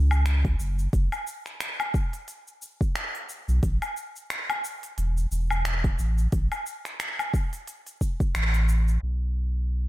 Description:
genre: organic downtempo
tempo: 89 BPM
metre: 4/4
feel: swing 57% on 16ths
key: unclear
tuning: A4 = 441 Hz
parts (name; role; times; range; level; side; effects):
- warm sub bass; bass; 0.0-9.9 s; E1 to C#2; -23 LUFS; equal; sidechain pumping
- organic electronic drum kit; drums; 0.1-9.9 s; finger snaps, hi-hat, shaker, woodblock; -31 LUFS; left 1 dB; none
- electronic kick drum; drums; 0.4-8.3 s; none; -25 LUFS; equal; none
room: little or no reverb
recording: low-pass filter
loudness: -24 LUFS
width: side -16 dB against mid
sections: 0.0-9.0 A section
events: kick drops out 8.3-9.0; band accent 8.3-8.7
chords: none

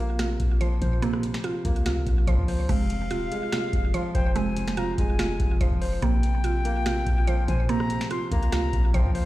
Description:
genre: hip hop, trap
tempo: 144 BPM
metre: 4/4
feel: half-time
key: F minor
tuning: A4 = 440 Hz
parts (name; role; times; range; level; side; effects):
- dark concert grand piano; accompaniment; 0.0-9.3 s; C3 to C5; -31 LUFS; left 1 dB; low-pass filter
- mallet-like synth pluck; arpeggios; 0.0-9.3 s; Ab3 to C5; -30 LUFS; right 5 dB; chorus, low-pass filter, digital delay
- clean 808-style bass; bass; 0.0-9.3 s; Eb1 to Bb2; -27 LUFS; equal; none
- booming analog drum machine; drums; 0.2-9.3 s; crash cymbal, finger snaps, hi-hat, kick drum, rim click, snare drum; -26 LUFS; equal; none
- reedy concert flute; second line; 2.7-9.3 s; F5 to C6; -33 LUFS; left 5 dB; digital delay
room: little or no reverb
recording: played on a big sound system in a bare room, large studio reverb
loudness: -22 LUFS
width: side -16 dB against mid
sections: 0.0-2.7 A section; 2.7-9.3 B section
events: none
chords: 0.0 Bbsus2; 2.7 Fm; 6.0 Bbsus2

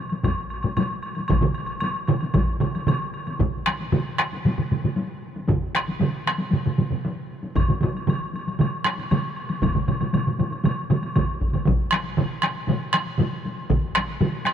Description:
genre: japanese traditional, taiko drum ensemble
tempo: 116 BPM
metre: 4/4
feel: straight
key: none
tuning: none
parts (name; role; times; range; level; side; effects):
- taiko ensemble; percussion; 0.1-14.5 s; none; -29 LUFS; left 2 dB; none
- woodblock; percussion; 0.1-3.4, 7.6-11.7 s; none; -32 LUFS; equal; none
- taiko ensemble; percussion; 0.2-14.5 s; none; -27 LUFS; left 3 dB; none
- taiko ensemble; percussion; 0.2-13.8 s; none; -26 LUFS; equal; none
- solo taiko drums; percussion; 1.3-14.5 s; none; -25 LUFS; right 5 dB; none
room: moderate huge ambient reverb, RT60 4.2 s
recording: none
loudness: -21 LUFS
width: side -9 dB against mid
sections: 0.0-3.4 A section; 3.4-11.7 B section; 11.7-14.5 C section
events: speeding up 0.0-14.5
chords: none

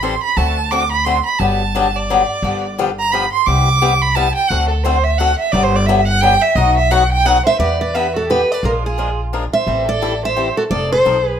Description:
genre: acoustic string swing (jazz manouche)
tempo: 174 BPM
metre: 3/4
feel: swing 61% on 8ths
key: E minor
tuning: A4 = 441 Hz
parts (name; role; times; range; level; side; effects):
- warm violin; second line; 0.0-11.4 s; E#4 to D6; -18 LUFS; right 4 dB; none
- picked swing-style acoustic guitar; accompaniment; 0.0-11.2 s; B2 to A#4; -18 LUFS; left 5 dB; none
- upright bass; bass; 0.0-11.3 s; F1 to E2; -19 LUFS; equal; none
- picked steel-string acoustic guitar; melody; 7.5-11.4 s; G#4 to E5; -16 LUFS; right 1 dB; none
room: moderate studio reverb, RT60 0.6 s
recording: none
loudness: -13 LUFS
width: side -8 dB against mid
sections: 0.0-7.6 A section; 7.6-11.4 B section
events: violin solo 0.0-7.6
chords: 0.4 D7; 1.4 Gmaj9; 2.4 G7; 3.5 Cmaj7; 4.5 D7; 5.5 Gmaj7; 6.6 B7; 7.6 Em7; 8.6 A#7; 9.7 Am7; 10.7 F7

